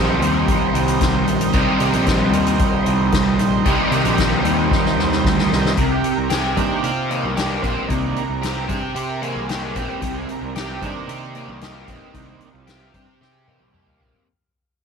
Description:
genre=psychedelic rock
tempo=113 BPM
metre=4/4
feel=straight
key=C minor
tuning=A4 = 439 Hz
part: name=combo organ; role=sustained chords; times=0.0-14.2 s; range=Eb3 to G5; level=-25 LUFS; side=right 11 dB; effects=lush chorus
part: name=overdriven semi-hollow guitar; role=riff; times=0.0-14.3 s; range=C3 to G4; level=-20 LUFS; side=equal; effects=flanger
part: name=fuzz fingered electric bass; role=bass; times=0.0-14.1 s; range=Bb1 to C3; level=-25 LUFS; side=equal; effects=overdrive
part: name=soft-mallet drum kit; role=drums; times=0.2-14.3 s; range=hi-hat, kick drum, snare drum, toms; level=-24 LUFS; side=left 2 dB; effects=none
room=light reverb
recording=1960s-style stereo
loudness=-17 LUFS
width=side -6 dB against mid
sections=0.0-5.8 A section; 5.8-14.3 B section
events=drum fill 4.7-5.8, 13.2-14.3; fade-out 5.8-14.3; transistor combo organ solo 5.8-14.3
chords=0.0 Cm7

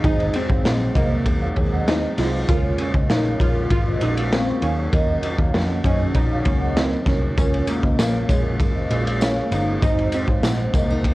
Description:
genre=indie pop, bedroom pop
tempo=98 BPM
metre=4/4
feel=straight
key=Db major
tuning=A4 = 440 Hz
part: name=warm analog keys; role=melody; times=0.0-11.1 s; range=Ab3 to F4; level=-26 LUFS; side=equal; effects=wide subtle chorus, cassette tape, analog delay
part: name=vibraphone with soft mallets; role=second line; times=0.0-10.9 s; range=Ab4 to Db6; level=-28 LUFS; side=right 2 dB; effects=ensemble chorus, analog delay
part: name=mellow tine electric piano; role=accompaniment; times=0.0-11.1 s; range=Gb3 to Db5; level=-30 LUFS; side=right 2 dB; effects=medium stereo tremolo, cassette tape
part: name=picked steel-string acoustic guitar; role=accompaniment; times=0.0-11.1 s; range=Ab2 to Gb4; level=-31 LUFS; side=left 2 dB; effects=lush chorus, warbly pitch drift
part: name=vintage muted picked electric bass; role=bass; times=0.0-11.1 s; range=G1 to Gb2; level=-24 LUFS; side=equal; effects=none
part: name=raw garage drum kit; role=drums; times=0.0-11.1 s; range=hi-hat, kick drum, ride cymbal, snare drum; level=-21 LUFS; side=equal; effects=cassette tape
part: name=tambourine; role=percussion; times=7.4-10.9 s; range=none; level=-40 LUFS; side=left 2 dB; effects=none
room=light reverb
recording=home recording on cassette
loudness=-18 LUFS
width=side -18 dB against mid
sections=0.0-11.1 A section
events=none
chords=0.0 Ab7; 2.5 Db6; 4.6 Ebm7; 7.4 Db6; 9.8 Ab7

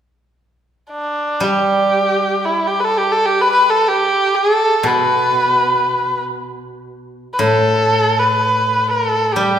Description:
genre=chinese traditional, Chinese chamber ensemble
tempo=free time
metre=none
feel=none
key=G gong mode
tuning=A4 = 441 Hz
part: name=warm erhu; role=melody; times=0.9-9.6 s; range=D4 to B4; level=-14 LUFS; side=equal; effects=none
part: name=steel-string zither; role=accompaniment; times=1.4-9.6 s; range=A2 to G3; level=-20 LUFS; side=right 1 dB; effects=none
room=wet recital hall reverb, RT60 1.7 s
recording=recorded in a church or concert hall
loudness=-13 LUFS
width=side -9 dB against mid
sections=0.2-9.6 A section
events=none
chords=none

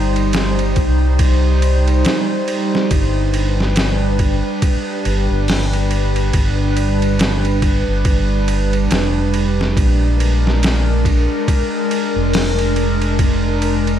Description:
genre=trip hop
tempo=70 BPM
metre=4/4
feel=swing 59% on 16ths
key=unclear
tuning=A4 = 440 Hz
part: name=warbly tape-like pad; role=sustained chords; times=0.0-14.0 s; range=G3 to C5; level=-19 LUFS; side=equal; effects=chorus, built-in reverb
part: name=fingered electric bass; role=bass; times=0.0-14.0 s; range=F1 to C2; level=-17 LUFS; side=equal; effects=none
part: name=trip hop sampler-style drum kit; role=drums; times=0.2-14.0 s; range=hi-hat, kick drum, ride cymbal, snare drum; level=-20 LUFS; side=equal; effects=none
room=digital ambience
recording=none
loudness=-14 LUFS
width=side -10 dB against mid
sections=0.0-14.0 A section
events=none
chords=0.0 Cm; 2.9 G; 9.8 Bb7

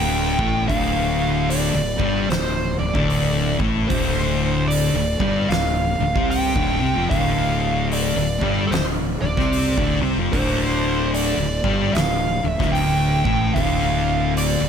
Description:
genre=stoner and doom metal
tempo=75 BPM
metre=4/4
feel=swing 62% on 8ths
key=D minor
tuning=A4 = 440 Hz
part: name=fuzz lead guitar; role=melody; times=0.0-14.7 s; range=A4 to G5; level=-24 LUFS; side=right 2 dB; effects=wah, distortion, digital delay
part: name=thick fuzz guitar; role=riff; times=0.0-14.7 s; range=D2 to C4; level=-23 LUFS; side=left 10 dB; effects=distortion
part: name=thick fuzz guitar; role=riff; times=0.0-14.7 s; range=D2 to C4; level=-25 LUFS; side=right 11 dB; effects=distortion
part: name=fuzz fingered electric bass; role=bass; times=0.0-14.7 s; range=D1 to C2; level=-25 LUFS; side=equal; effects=overdrive
part: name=oversized low-tuned drum kit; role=drums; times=0.4-14.6 s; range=hi-hat, kick drum, snare drum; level=-26 LUFS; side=equal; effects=none
room=small room ambience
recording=none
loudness=-18 LUFS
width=side -7 dB against mid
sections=0.0-14.7 A section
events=none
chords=0.0 Dm

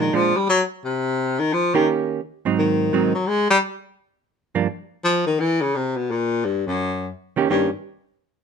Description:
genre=jazz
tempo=171 BPM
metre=4/4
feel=swing 63% on 8ths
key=Eb mixolydian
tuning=A4 = 440 Hz
part: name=warm baritone saxophone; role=melody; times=0.0-7.7 s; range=Gb2 to Ab3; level=-19 LUFS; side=left 3 dB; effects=none
part: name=hollow-body jazz guitar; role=accompaniment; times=0.0-4.7, 7.4-7.7 s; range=G2 to G4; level=-20 LUFS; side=right 8 dB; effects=none
room=light reverb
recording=close, detailed microphones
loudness=-19 LUFS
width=side -6 dB against mid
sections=0.0-4.7 A section; 4.7-7.5 B section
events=none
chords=0.5 Cm; 1.9 Eb7; 2.6 Ab7; 3.3 Bb; 4.7 N.C.; 6.8 Eb7

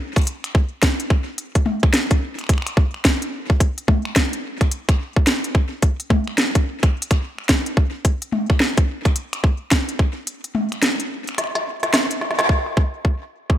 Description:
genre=IDM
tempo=108 BPM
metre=4/4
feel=swing 62% on 16ths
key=none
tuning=none
part: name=electronic kick drum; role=drums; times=0.2-13.6 s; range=none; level=-17 LUFS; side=equal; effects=overdrive
part: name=organic electronic drum kit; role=drums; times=0.2-13.6 s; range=finger snaps, hi-hat, snare drum, toms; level=-21 LUFS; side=equal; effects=overdrive, low-pass filter on snare, low-pass filter on hats, low-pass filter on toms, low-pass filter on room, tape echo
room=light reverb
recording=none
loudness=-18 LUFS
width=side -12 dB against mid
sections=0.0-12.5 A section; 12.5-13.6 B section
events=kick drops out 10.3-12.5; drum fill 11.4-12.5; band accent 12.4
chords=none

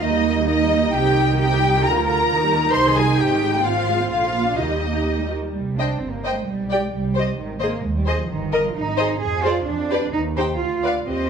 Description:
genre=quick classical-period movement for string orchestra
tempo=131 BPM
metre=2/4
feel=rubato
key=Eb major, C minor from 5.5 s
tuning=A4 = 440 Hz
part: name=rich studio violin section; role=melody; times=0.0-11.3 s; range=D5 to C6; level=-26 LUFS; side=left 5 dB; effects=none
part: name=rich chamber violin section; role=second line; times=0.0-11.3 s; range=Bb4 to C6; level=-25 LUFS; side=left 3 dB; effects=none
part: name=rich chamber viola section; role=accompaniment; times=0.0-11.3 s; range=C3 to C5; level=-24 LUFS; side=right 4 dB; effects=none
part: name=rich chamber cello section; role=bass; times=0.0-11.3 s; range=Eb3 to C5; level=-24 LUFS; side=right 3 dB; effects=none
part: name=rich symphonic double bass section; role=bass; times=0.0-11.3 s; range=G1 to F2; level=-25 LUFS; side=right 2 dB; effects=none
room=moderate recital hall reverb, RT60 1.6 s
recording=minimal, uncompressed stereo recording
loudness=-18 LUFS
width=side -7 dB against mid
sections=0.0-5.5 A section; 5.5-11.3 B section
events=none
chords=0.0 Eb; 0.9 Cm; 1.8 Bb/D; 2.3 Eb; 2.7 Cm; 3.2 Ab; 3.6 Fm/Ab; 4.1 Bb; 4.6 Eb; 5.5 Cm; 6.5 G/B; 6.9 Cm; 7.4 Ab; 8.3 Eb/G; 8.8 Ab; 9.2 Dm7b5/F; 9.7 G7/F; 10.1 Cm/Eb; 10.6 Bdim/D

